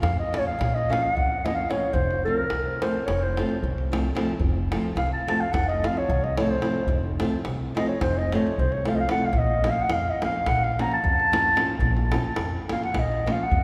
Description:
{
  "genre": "balkan folk, Balkan wedding band",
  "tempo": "218 BPM (eighths)",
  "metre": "9/8",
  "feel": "straight",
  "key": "F phrygian dominant",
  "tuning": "A4 = 440 Hz",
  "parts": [
    { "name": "dark clarinet", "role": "melody", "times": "0.0-13.6 s", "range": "Bb4 to Bb5", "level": "-28 LUFS", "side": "equal", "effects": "none" },
    { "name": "upright bass", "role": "bass", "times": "0.0-13.6 s", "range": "F1 to F2", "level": "-31 LUFS", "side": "equal", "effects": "none" },
    { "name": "davul", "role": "percussion", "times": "0.0-13.6 s", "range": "none", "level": "-32 LUFS", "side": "equal", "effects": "none" },
    { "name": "flamenco guitar", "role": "accompaniment", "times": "0.3-13.5 s", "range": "F3 to F4", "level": "-32 LUFS", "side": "equal", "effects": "none" }
  ],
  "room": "wet church reverb, RT60 3.4 s",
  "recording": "recorded in a church or concert hall",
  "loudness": "-24 LUFS",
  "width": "mono",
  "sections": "0.0-13.6 A section",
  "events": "clarinet solo 0.0-13.6",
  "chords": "0.0 Bbm; 1.9 F; 9.3 Bbm"
}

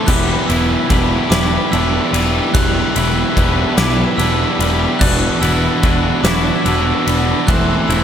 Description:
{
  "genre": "post-rock",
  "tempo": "49 BPM (dotted quarters)",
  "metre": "6/8",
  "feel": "straight",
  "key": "E minor",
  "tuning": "A4 = 440 Hz",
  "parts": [
    { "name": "pedal steel guitar", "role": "sustained chords", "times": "0.0-8.0 s", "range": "B4 to E6", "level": "-31 LUFS", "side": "right 1 dB", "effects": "none" },
    { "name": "glockenspiel with hard plastic mallets", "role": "arpeggios", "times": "0.0-8.0 s", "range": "D6 to F#6", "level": "-24 LUFS", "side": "right 2 dB", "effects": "slapback echo" },
    { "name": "twangy electric guitar", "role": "arpeggios", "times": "0.0-8.0 s", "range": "E2 to E4", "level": "-24 LUFS", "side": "left 2 dB", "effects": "analog chorus, slapback echo" },
    { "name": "cranked stack guitar", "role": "riff", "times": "0.0-8.0 s", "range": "E3 to C5", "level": "-20 LUFS", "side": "left 10 dB", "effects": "overdrive" },
    { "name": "thick fuzz guitar", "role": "riff", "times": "0.0-8.0 s", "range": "E3 to G4", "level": "-19 LUFS", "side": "right 9 dB", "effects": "distortion, slapback echo" },
    { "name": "fuzz picked electric bass", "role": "bass", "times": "0.1-8.0 s", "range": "E1 to B1", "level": "-19 LUFS", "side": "equal", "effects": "overdrive" },
    { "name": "huge arena drum kit", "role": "drums", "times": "0.1-8.0 s", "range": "crash cymbal, kick drum, ride cymbal, snare drum", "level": "-19 LUFS", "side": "equal", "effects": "none" }
  ],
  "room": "moderate concert hall reverb, RT60 2.0 s",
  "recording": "big arena sound",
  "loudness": "-13 LUFS",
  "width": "side -8 dB against mid",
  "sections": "0.0-8.0 A section",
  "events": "none",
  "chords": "0.1 Em7; 5.0 Bm/E; 7.5 Am/E"
}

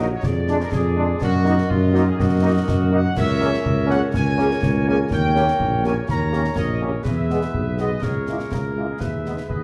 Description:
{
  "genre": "military-style march for wind band",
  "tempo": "123 BPM",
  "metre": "2/4",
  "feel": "straight",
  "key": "Eb minor",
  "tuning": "A4 = 440 Hz",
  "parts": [
    { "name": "mellow trumpet section", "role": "melody", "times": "0.0-9.6 s", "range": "F4 to A#5", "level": "-30 LUFS", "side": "equal", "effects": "none" },
    { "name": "warm woodwind section", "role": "second line", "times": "0.0-9.6 s", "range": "Gb4 to Eb5", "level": "-31 LUFS", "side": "equal", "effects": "none" },
    { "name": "mellow French horn section", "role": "accompaniment", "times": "0.0-9.3 s", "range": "Ab3 to G#4", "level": "-31 LUFS", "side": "equal", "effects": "none" },
    { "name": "warm trombone section", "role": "sustained chords", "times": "0.0-9.3 s", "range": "G#3 to Eb4", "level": "-32 LUFS", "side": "equal", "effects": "none" },
    { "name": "mellow tuba", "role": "bass", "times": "0.0-9.6 s", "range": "A#1 to Gb2", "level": "-23 LUFS", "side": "equal", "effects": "none" },
    { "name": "concert snare drum, concert bass drum and clash cymbals", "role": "drums", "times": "0.2-9.6 s", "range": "none", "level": "-30 LUFS", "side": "equal", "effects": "none" }
  ],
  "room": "wet large studio reverb, RT60 1.5 s",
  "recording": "dark, warm production",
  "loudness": "-20 LUFS",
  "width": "mono",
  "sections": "0.0-9.6 A section",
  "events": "none",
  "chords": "0.2 Ddim/F; 1.2 Ebm/Gb; 3.2 A#m7b5/C#; 5.1 D#7; 7.1 E; 8.0 A#m7b5/C#; 9.0 G#m/D#"
}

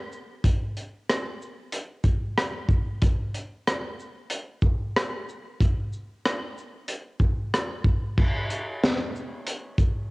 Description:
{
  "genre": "hip hop",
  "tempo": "93 BPM",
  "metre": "4/4",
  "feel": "swing 62% on 16ths",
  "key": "none",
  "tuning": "none",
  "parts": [
    { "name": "crunchy breakbeat drum kit", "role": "drums", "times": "0.1-10.0 s", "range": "crash cymbal, hi-hat, kick drum, rim click, shaker, snare drum", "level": "-24 LUFS", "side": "equal", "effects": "cassette tape" }
  ],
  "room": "light reverb",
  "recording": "home recording on cassette",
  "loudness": "-24 LUFS",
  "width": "side -26 dB against mid",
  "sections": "0.0-8.2 A section; 8.2-10.1 B section",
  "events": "none",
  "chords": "none"
}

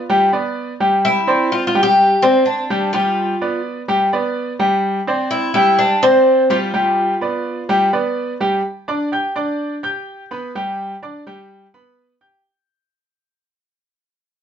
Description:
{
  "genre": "latin",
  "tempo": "126 BPM",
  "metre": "4/4",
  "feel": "straight",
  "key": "unclear",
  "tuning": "A4 = 440 Hz",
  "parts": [
    { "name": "Cuban tres", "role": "melody", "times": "0.0-7.9 s", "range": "C4 to G4", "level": "-16 LUFS", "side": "left 1 dB", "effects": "none" },
    { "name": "clear baby grand piano", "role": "arpeggios", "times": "0.1-12.4 s", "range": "G3 to G6", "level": "-17 LUFS", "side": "equal", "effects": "none" }
  ],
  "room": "wet small room reverb, RT60 0.5 s",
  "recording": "heard from further back in the room, nothing above 7.8 kHz",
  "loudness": "-15 LUFS",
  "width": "side -8 dB against mid",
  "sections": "0.0-8.6 A section; 8.6-12.4 B section",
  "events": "fade-out 8.6-12.4",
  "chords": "0.0 G7; 1.0 Csus2; 2.9 G7; 4.8 Csus2; 6.7 G7; 8.6 G"
}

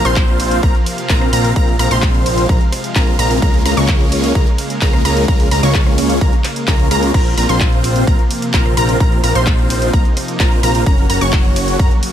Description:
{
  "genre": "EDM, festival progressive house",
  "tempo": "129 BPM",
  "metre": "4/4",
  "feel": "straight",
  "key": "Bb minor",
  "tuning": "A4 = 440 Hz",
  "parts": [
    { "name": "supersaw pad", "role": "sustained chords", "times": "0.0-12.1 s", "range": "C3 to F5", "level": "-24 LUFS", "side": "right 1 dB", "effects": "sidechain pumping" },
    { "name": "wide unison pluck", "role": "arpeggios", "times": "0.0-11.9 s", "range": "Bb5 to Db6", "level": "-22 LUFS", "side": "equal", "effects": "sidechain pumping, dub echo" },
    { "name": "big supersaw lead", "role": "riff", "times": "0.0-11.9 s", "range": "Ab3 to Db5", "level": "-19 LUFS", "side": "equal", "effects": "phaser, sidechain pumping, dub echo" },
    { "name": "fat analog bass", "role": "bass", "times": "0.0-11.9 s", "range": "Gb1 to Db2", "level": "-18 LUFS", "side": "equal", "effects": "sidechain pumping" },
    { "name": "big-room dance drum kit", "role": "drums", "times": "0.0-12.1 s", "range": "crash cymbal, handclaps, hi-hat, ride cymbal, rim click", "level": "-23 LUFS", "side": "equal", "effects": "overdrive, small room reverb" },
    { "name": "electronic kick drum", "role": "drums", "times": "0.2-11.9 s", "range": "none", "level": "-14 LUFS", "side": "equal", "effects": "overdrive, small room reverb" }
  ],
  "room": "little or no reverb",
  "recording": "none",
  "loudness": "-12 LUFS",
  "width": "side -10 dB against mid",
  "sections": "0.0-12.1 A section",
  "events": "none",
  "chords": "0.0 Bbsus2; 3.4 Db6; 7.1 Bbsus2; 10.9 Gb"
}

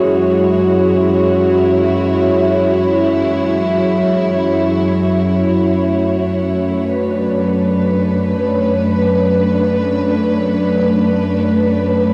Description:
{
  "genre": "ambient",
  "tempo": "free time",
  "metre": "none",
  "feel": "none",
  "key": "unclear",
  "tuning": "A4 = 440 Hz",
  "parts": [
    { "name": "dark studio string section", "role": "solo", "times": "0.0-12.1 s", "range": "F#2 to C#5", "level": "-15 LUFS", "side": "equal", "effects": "cassette tape, tape echo" }
  ],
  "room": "wet small room reverb, RT60 0.5 s",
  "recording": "home recording on cassette",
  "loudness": "-15 LUFS",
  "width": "mono",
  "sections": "0.0-12.1 A section",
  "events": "none",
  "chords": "0.0 E69/F#; 5.5 Bm9/F#"
}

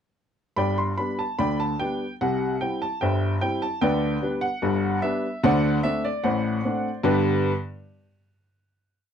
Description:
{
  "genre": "ragtime piano",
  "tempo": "74 BPM",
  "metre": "2/4",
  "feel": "straight",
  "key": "G major",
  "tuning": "A4 = 440 Hz",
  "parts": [
    { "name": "warm baby grand piano", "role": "solo", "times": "0.6-7.5 s", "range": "G1 to C6", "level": "-22 LUFS", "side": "equal", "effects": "none" }
  ],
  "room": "light reverb",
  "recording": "none",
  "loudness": "-22 LUFS",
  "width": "side -8 dB against mid",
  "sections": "0.6-7.1 A section; 7.1-8.7 final chord",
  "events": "none",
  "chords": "0.6 G; 2.2 C; 3.8 G/D; 5.4 D7; 7.1 G"
}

